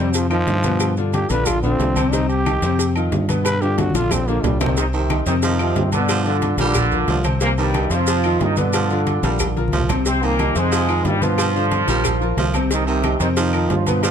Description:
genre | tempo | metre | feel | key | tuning
latin, salsa | 181 BPM | 4/4 | straight | C minor | A4 = 440 Hz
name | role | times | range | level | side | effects
growling trombone | melody | 0.0-4.8 s | Eb3 to B4 | -22 LUFS | right 1 dB | none
bright grand piano | accompaniment | 0.0-14.1 s | B2 to C5 | -23 LUFS | left 3 dB | none
fingered electric bass | bass | 0.0-14.1 s | Bb1 to G2 | -22 LUFS | equal | none
agogo bells and timbales | percussion | 0.1-14.1 s | none | -29 LUFS | right 5 dB | none
congas | percussion | 0.1-14.1 s | none | -26 LUFS | left 1 dB | none
maracas | percussion | 0.1-14.1 s | none | -30 LUFS | right 4 dB | none
cowbell and bongos | percussion | 0.2-14.1 s | none | -29 LUFS | left 7 dB | none
claves | percussion | 0.3-14.1 s | none | -33 LUFS | left 8 dB | none
bright trombone section | melody | 4.8-14.1 s | G2 to F4 | -22 LUFS | right 2 dB | none
growling baritone saxophone | second line | 4.9-14.1 s | Eb3 to G3 | -25 LUFS | right 6 dB | none
room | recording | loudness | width
light reverb | close, detailed microphones | -16 LUFS | side -8 dB against mid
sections
0.0-4.8 A section; 4.8-14.1 B section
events
trombone solo 0.0-4.8; drum fill 3.5-4.8, 9.6-10.1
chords
0.1 F5; 0.8 G7; 1.5 Bbadd9; 2.1 Cm; 2.8 F5; 3.5 G7; 4.1 Bbadd9; 4.8 Cm; 5.4 F5; 6.1 G7; 6.8 Bbadd9; 7.4 Cm; 8.1 F5; 8.7 G7; 9.4 Bbadd9; 10.1 Cm7; 10.7 Fm7; 11.4 G7; 12.0 Bbsus2; 12.7 Cm; 13.4 F5

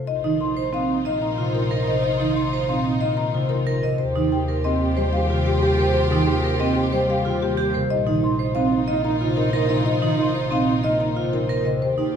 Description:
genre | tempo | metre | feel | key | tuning
classical, minimalist pattern music | 184 BPM | 6/4 | straight | unclear | A4 = 441 Hz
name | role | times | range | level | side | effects
marimba with medium mallets | melody | 0.0-12.0 s | G4 to C6 | -27 LUFS | left 10 dB | none
concert harp | accompaniment | 0.0-12.2 s | C3 to Eb4 | -25 LUFS | left 2 dB | none
warm French horn | second line | 0.1-12.1 s | Eb4 to G4 | -29 LUFS | right 4 dB | none
clear symphonic string section | sustained chords | 0.1-12.2 s | Eb4 to G4 | -32 LUFS | left 1 dB | none
clear symphonic double bass section | bass | 0.1-12.2 s | Bb1 to Eb2 | -26 LUFS | equal | none
vibraphone with medium hard mallets | arpeggios | 0.2-12.2 s | C4 to Eb5 | -24 LUFS | right 6 dB | none
room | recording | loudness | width
wet recital hall reverb, RT60 1.7 s | minimal, uncompressed stereo recording | -19 LUFS | side -7 dB against mid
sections
0.1-12.2 A section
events
none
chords
0.1 Bbsus4; 4.0 Ebadd9; 7.9 Bbsus4

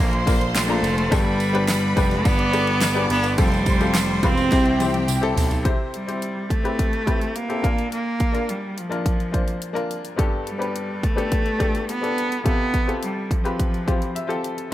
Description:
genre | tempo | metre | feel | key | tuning
piano-driven pop | 106 BPM | 4/4 | straight | C major | A4 = 440 Hz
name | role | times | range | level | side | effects
rich cello | melody | 0.0-14.4 s | F3 to C4 | -24 LUFS | right 1 dB | none
clear symphonic violin section | second line | 0.0-5.6 s | G4 to D6 | -28 LUFS | right 1 dB | ping-pong delay
bright upright piano | accompaniment | 0.0-14.7 s | G2 to Bb5 | -26 LUFS | left 3 dB | none
fuzz picked electric bass | bass | 0.0-5.6 s | E1 to C2 | -25 LUFS | equal | overdrive
pop drum kit | drums | 0.1-14.7 s | handclaps, hi-hat, kick drum, ride cymbal, snare drum, toms | -23 LUFS | equal | none
tambourine | percussion | 0.3-5.6 s | none | -35 LUFS | right 9 dB | none
room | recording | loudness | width
light reverb | none | -19 LUFS | side -14 dB against mid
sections
0.0-5.7 A section; 5.7-14.7 B section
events
drum fill 4.5-5.7; upright piano fill 13.9-14.7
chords
0.0 Bb; 1.1 Gadd9; 3.4 Fadd9; 4.5 C; 7.6 Bb; 10.2 Gadd9; 12.5 Fadd9

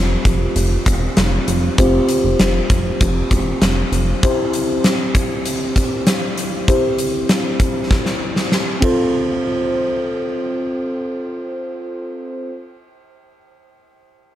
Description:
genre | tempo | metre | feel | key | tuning
synth-pop | 98 BPM | 4/4 | straight | F major | A4 = 440 Hz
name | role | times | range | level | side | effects
muted felt-like synth keys | accompaniment | 0.0-12.5 s | C4 to C5 | -20 LUFS | equal | chorus
chorused synth bass | bass | 0.0-4.1 s | E1 to F1 | -19 LUFS | equal | none
huge arena drum kit | drums | 0.3-9.0 s | hi-hat, kick drum, ride cymbal, snare drum | -18 LUFS | equal | none
room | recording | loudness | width
light reverb | none | -15 LUFS | side -12 dB against mid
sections
0.0-9.1 A section; 9.1-11.6 B section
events
drum fill 7.9-9.1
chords
0.0 Fsus2; 4.2 C; 8.8 F

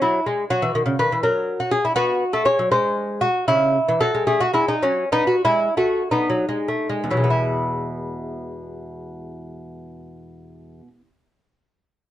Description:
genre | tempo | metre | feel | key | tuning
classical, baroque-style dance for lute | 47-82 BPM (dotted quarters) | 6/8 | rubato | E major | A4 = 436 Hz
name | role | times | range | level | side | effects
lute | solo | 0.0-11.1 s | E2 to C#5 | -19 LUFS | equal | none
room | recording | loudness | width
light reverb | dark, warm production | -18 LUFS | side -12 dB against mid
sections
0.0-7.3 A section; 7.3-12.1 B section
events
slowing down 2.7-7.3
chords
0.0 F#5; 1.2 N.C.; 2.0 B5; 2.7 N.C.; 3.5 C#m; 4.3 F#m; 5.1 B7; 7.3 E

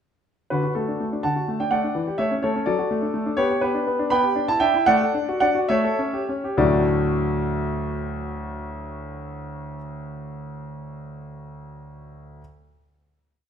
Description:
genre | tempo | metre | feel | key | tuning
classical-period piano sonatina | 65-85 BPM (dotted quarters) | 6/8 | rubato | D major | A4 = 440 Hz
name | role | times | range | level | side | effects
warm concert grand piano | solo | 0.5-12.4 s | D2 to B5 | -21 LUFS | equal | none
room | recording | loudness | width
moderate recital hall reverb, RT60 1.5 s | none | -20 LUFS | side -8 dB against mid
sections
0.5-6.6 A section; 6.6-10.2 final chord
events
slowing down 2.7-6.6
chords
0.5 D; 2.0 A7/E; 2.7 D/F#; 3.4 G/B; 4.1 Em7/B; 4.9 D/A; 5.7 A7; 6.6 D

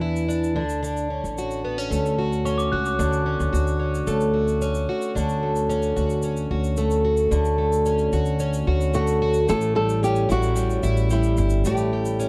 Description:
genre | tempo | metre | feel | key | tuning
acoustic pop | 111 BPM | 4/4 | straight | D major | A4 = 440 Hz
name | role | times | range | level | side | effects
nylon-string guitar | melody | 0.0-0.5, 8.9-12.3 s | E4 to B4 | -27 LUFS | equal | none
picked plugged-in twelve-string acoustic guitar | accompaniment | 0.0-12.3 s | E2 to F#4 | -26 LUFS | equal | none
upright bass | bass | 0.0-12.3 s | G1 to E2 | -27 LUFS | equal | none
tube shaker | percussion | 0.2-12.3 s | none | -44 LUFS | equal | none
glockenspiel with soft plastic mallets | second line | 2.5-3.6 s | C#6 to F#6 | -33 LUFS | equal | none
room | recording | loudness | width
little or no reverb | dark, warm production | -22 LUFS | mono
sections
0.0-5.2 A section; 5.2-9.5 B section; 9.5-12.3 C section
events
none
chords
0.0 E7(no3); 0.6 Dmaj7; 9.5 A7

